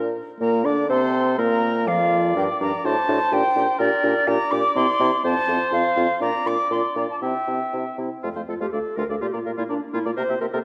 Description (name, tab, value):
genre	quick classical-period movement for wind quintet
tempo	123 BPM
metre	2/4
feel	rubato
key	F major from 4.3 s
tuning	A4 = 435 Hz
part	mellow French horn	accompaniment	0.0-10.6 s	F3 to D4	-30 LUFS	equal	none
part	mellow bassoon	bass	0.0-10.6 s	D2 to D3	-28 LUFS	equal	none
part	silver concert flute	melody	0.4-10.6 s	A4 to D6	-26 LUFS	equal	none
part	mellow clarinet	accompaniment	0.4-10.6 s	D4 to D5	-31 LUFS	equal	none
part	warm oboe	second line	0.9-10.6 s	F4 to E5	-29 LUFS	equal	none
room	moderate concert hall reverb, RT60 2.2 s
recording	dark, warm production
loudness	-22 LUFS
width	mono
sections	0.4-8.2 A section; 8.2-10.6 B section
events	none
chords	0.4 Bb; 0.9 Am/C; 1.4 Bb; 2.4 Gm; 2.8 D7/A; 3.3 Gm/Bb; 4.8 C; 5.2 F; 6.2 Bb; 7.2 C; 8.2 F; 8.7 Dm; 9.2 Bb; 10.2 C7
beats	| 0.40 0.90 | 1.38 1.88 | 2.37 2.85 | 3.33 3.80 | 4.27 4.76 | 5.24 5.72 | 6.21 6.70 | 7.22 7.73 | 8.24 8.73 | 9.22 9.70 | 10.18